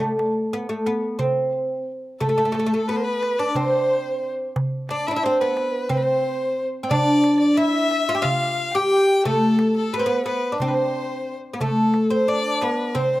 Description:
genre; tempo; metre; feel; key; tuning
Turkish makam ensemble; 179 BPM (eighths); 7/8; straight; C makam rast; A4 = 439 Hz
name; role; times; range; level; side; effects
oud; melody; 0.0-13.2 s; A3 to G4; -20 LUFS; equal; none
darbuka; percussion; 0.2-13.1 s; none; -28 LUFS; right 1 dB; none
clear violin; second line; 2.2-13.2 s; A4 to G5; -26 LUFS; left 4 dB; slapback echo
dark studio violin section; second line; 2.2-11.4 s; A4 to G5; -29 LUFS; right 1 dB; slapback echo
room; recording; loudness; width
light reverb; recorded outdoors, with no room sound; -19 LUFS; side -17 dB against mid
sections
0.0-11.6 A section; 11.6-13.2 B section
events
none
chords
none

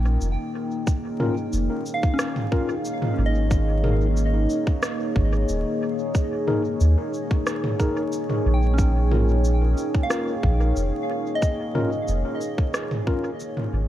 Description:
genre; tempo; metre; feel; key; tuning
ambient dub; 91 BPM; 4/4; straight; Bb dorian; A4 = 440 Hz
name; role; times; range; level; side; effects
deep dark ambient pad; sustained chords; 0.0-13.9 s; Bb3 to Db5; -27 LUFS; equal; chorus, built-in reverb, vintage 12-bit sampler grit
soft synth bell; arpeggios; 0.0-13.9 s; Db4 to G5; -32 LUFS; right 1 dB; chorus, phaser, dub echo
soft dub sub bass; bass; 0.0-13.9 s; Eb1 to Eb2; -20 LUFS; equal; none
organic electronic drum kit; drums; 0.2-13.7 s; cabasa, rim click, toms; -29 LUFS; equal; dub echo
electronic kick drum; drums; 0.9-13.2 s; none; -23 LUFS; equal; none
mellow tine electric piano; stabs; 1.2-13.3 s; Db4 to Bb4; -31 LUFS; left 2 dB; fast stereo tremolo, dub echo
room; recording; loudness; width
light reverb; vinyl crackle; -21 LUFS; side -13 dB against mid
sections
0.0-13.9 A section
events
fade-out 12.3-13.9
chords
0.0 Bbm; 3.5 Absus2; 8.8 Bbm

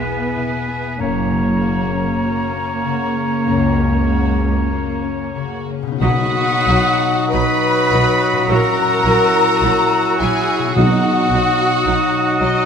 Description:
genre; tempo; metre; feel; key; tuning
classical, slow romantic movement for symphony orchestra; 43-55 BPM; 4/4; rubato; B major; A4 = 439 Hz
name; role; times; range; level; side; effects
warm symphonic violin section; melody; 0.0-12.7 s; C#5 to B5; -23 LUFS; left 3 dB; none
clear oboe; second line; 0.0-12.7 s; F#4 to C#5; -24 LUFS; right 3 dB; none
hollow concert flute; second line; 0.0-12.7 s; G#5 to E6; -23 LUFS; left 2 dB; none
warm symphonic violin section; second line; 0.0-12.7 s; A#3 to B4; -24 LUFS; left 1 dB; none
clear symphonic viola section; accompaniment; 0.0-12.5 s; F#3 to E4; -24 LUFS; right 3 dB; none
concert harp; arpeggios; 0.0-12.7 s; E2 to G#4; -24 LUFS; left 12 dB; none
dark French horn section; sustained chords; 1.0-12.7 s; F#3 to E4; -23 LUFS; left 4 dB; none
rich chamber cello section; bass; 1.0-12.7 s; C#2 to A#4; -24 LUFS; right 3 dB; none
rich studio double bass section; bass; 1.0-12.5 s; F#1 to C#2; -22 LUFS; right 3 dB; none
mellow trumpet; stabs; 6.0-12.7 s; F#4; -23 LUFS; right 3 dB; none
timpani; percussion; 6.0-12.4 s; B2; -21 LUFS; right 1 dB; none
room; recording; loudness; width
moderate scoring stage reverb, RT60 1.8 s; close, detailed microphones; -14 LUFS; side -7 dB against mid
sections
0.0-6.0 A section; 6.0-12.7 B section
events
none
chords
0.0 E; 1.0 F#; 6.0 B; 8.5 F#7/A#; 10.8 B

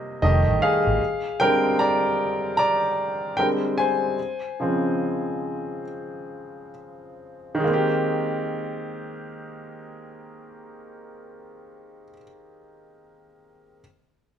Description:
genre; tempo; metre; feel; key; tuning
R&B; 66-77 BPM; 4/4; swing 64% on 16ths; Ab major; A4 = 440 Hz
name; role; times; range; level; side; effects
clear baby grand piano; accompaniment; 0.0-13.8 s; C3 to Bb5; -23 LUFS; equal; none
vintage muted fingered electric bass; bass; 0.2-1.0 s; F1 to A1; -22 LUFS; equal; none
room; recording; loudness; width
moderate large studio reverb, RT60 1.1 s; band playing live in one room; -21 LUFS; side -9 dB against mid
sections
0.0-7.6 A section; 7.6-11.3 B section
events
grand piano solo 0.0-7.6; slowing down 1.0-7.6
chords
0.2 F9; 1.0 Bb13; 4.2 Dbmaj7; 7.6 Abmaj9

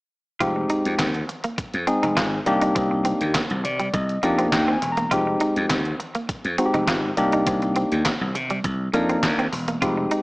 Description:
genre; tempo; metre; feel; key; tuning
early-eighties boogie funk; 102 BPM; 4/4; straight; F dorian; A4 = 435 Hz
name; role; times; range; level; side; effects
barky tine electric piano; accompaniment; 0.4-10.2 s; Ab3 to Bb5; -23 LUFS; left 1 dB; overdrive
semi-hollow electric guitar; riff; 0.4-10.2 s; G3 to F4; -28 LUFS; right 2 dB; wide subtle chorus
slap bass; bass; 0.4-10.1 s; E1 to C3; -25 LUFS; equal; none
detuned 8-bit digital drum machine; drums; 0.4-10.2 s; handclaps, hi-hat, kick drum, snare drum; -27 LUFS; equal; none
room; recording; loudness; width
light reverb; small speaker sound; -20 LUFS; side -23 dB against mid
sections
0.4-10.2 A section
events
tine electric piano fill 3.3-5.1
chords
0.4 Fm7; 2.5 Cm9; 5.1 Fm7; 7.2 Cm9

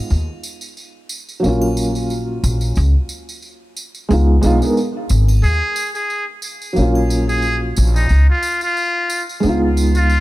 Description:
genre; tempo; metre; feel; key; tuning
trip hop; 90 BPM; 4/4; swing 56% on 16ths; Eb minor; A4 = 440 Hz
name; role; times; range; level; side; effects
felt-muted upright piano; accompaniment; 0.0-10.2 s; Gb3 to Bb4; -19 LUFS; right 1 dB; tremolo, low-pass filter, tape echo
upright bass; bass; 0.1-10.2 s; Ab1 to Eb2; -15 LUFS; equal; none
tambourine and triangle; percussion; 0.1-10.2 s; none; -31 LUFS; right 2 dB; none
trumpet with metal mute; melody; 5.4-10.2 s; Eb4 to Ab4; -20 LUFS; equal; vintage 12-bit sampler grit, tape echo
room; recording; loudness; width
studio reverb; dark, warm production; -14 LUFS; side -17 dB against mid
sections
0.0-10.2 A section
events
none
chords
0.1 Ebm7 (rootless); 2.8 Db7; 5.4 Ebm7 (rootless); 8.1 Db7

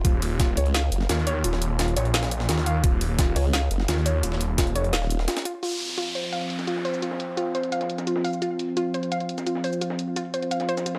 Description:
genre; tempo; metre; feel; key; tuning
dark technical drum and bass; 172 BPM; 4/4; straight; unclear; A4 = 440 Hz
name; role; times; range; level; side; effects
soft round pluck; arpeggios; 0.0-11.0 s; F4 to F5; -31 LUFS; equal; chorus, sidechain pumping, digital delay
formant-sweep wobble bass; bass; 0.0-1.1, 3.4-5.3 s; Eb1 to Db2; -26 LUFS; equal; chorus
snarling distorted saw bass; bass; 0.0-4.9 s; Eb1 to Eb2; -27 LUFS; equal; distortion, overdrive, sidechain pumping
breakbeat sampler-style drum kit; drums; 0.0-11.0 s; hi-hat, snare drum; -36 LUFS; equal; high-pass filter on hats, low-pass filter on hats, studio reverb, high-pass filter on snare, low-pass filter on snare
drum and bass drum kit; drums; 0.0-10.9 s; cabasa, hi-hat, snare drum; -32 LUFS; equal; overdrive, low-pass filter on hats, studio reverb, low-pass filter on snare, low-pass filter on perc
electronic kick drum; drums; 0.0-0.5, 2.8-4.7 s; none; -24 LUFS; equal; overdrive, studio reverb
sweeping resonant pad; sustained chords; 5.6-11.0 s; F3 to F4; -32 LUFS; equal; chorus, sidechain pumping
downlifter; sound effects; 5.6-8.4 s; none; -36 LUFS; equal; none
room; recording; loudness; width
light reverb; none; -25 LUFS; mono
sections
0.0-5.6 A section; 5.6-11.0 B section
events
break 5.3-5.6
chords
0.0 Eb5; 5.6 F5

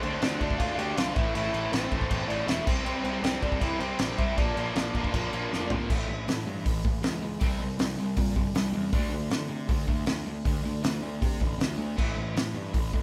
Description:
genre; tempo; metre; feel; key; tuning
punk rock; 158 BPM; 4/4; straight; D minor; A4 = 441 Hz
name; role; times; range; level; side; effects
bluesy overdriven lead guitar; melody; 0.0-5.7 s; C4 to G5; -35 LUFS; equal; distortion
cranked stack guitar; riff; 0.0-13.0 s; A2 to D4; -36 LUFS; equal; overdrive
distorted electric guitar; riff; 0.0-5.9 s; A2 to D4; -38 LUFS; equal; overdrive
fuzz picked electric bass; bass; 0.0-13.0 s; E1 to D3; -37 LUFS; equal; overdrive
loose indie drum kit; drums; 0.0-13.0 s; crash cymbal, hi-hat, kick drum, snare drum, toms; -31 LUFS; equal; none
room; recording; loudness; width
light reverb; band playing live in one room; -28 LUFS; mono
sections
0.0-5.9 A section; 5.9-13.0 B section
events
drum fill 5.5-5.9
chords
0.0 Dm; 1.2 Am; 2.7 C; 4.4 Bb; 5.9 A; 7.4 C5; 8.9 D5; 12.0 A5

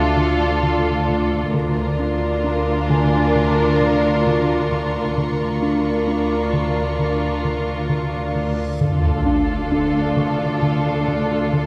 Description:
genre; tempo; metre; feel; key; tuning
cinematic, suspense film score; 66 BPM; 4/4; straight; D hungarian minor; A4 = 440 Hz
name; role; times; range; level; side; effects
warm symphonic violin section; melody; 0.0-11.7 s; A4 to Bb4; -28 LUFS; equal; none
rich symphonic violin section; second line; 0.0-11.7 s; F4; -29 LUFS; equal; none
rich symphonic viola section; accompaniment; 0.0-11.7 s; D4; -28 LUFS; equal; none
glass harmonica; sustained chords; 0.0-11.7 s; F4 to F5; -30 LUFS; equal; none
rich symphonic cello section; bass; 0.0-11.7 s; D2; -28 LUFS; equal; none
warm symphonic double bass section; bass; 0.0-11.7 s; D2; -29 LUFS; equal; none
warm grand piano; texture; 0.0-11.7 s; E5 to C#6; -37 LUFS; equal; none
rubbery square bass; riff; 0.2-11.7 s; D3 to D4; -26 LUFS; equal; none
warm symphonic violin section; texture; 1.5-8.3 s; Bb5 to C#6; -37 LUFS; equal; none
reverse cymbal and sub drop; sound effects; 8.8-11.7 s; none; -26 LUFS; equal; none
room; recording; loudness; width
wet scoring stage reverb, RT60 1.9 s; heard from further back in the room; -19 LUFS; mono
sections
0.0-8.8 A section; 8.8-11.7 A section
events
reverse cymbal 8.8; impact 8.8-11.7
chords
0.0 Dm; 1.5 Bb/D; 8.8 Dm

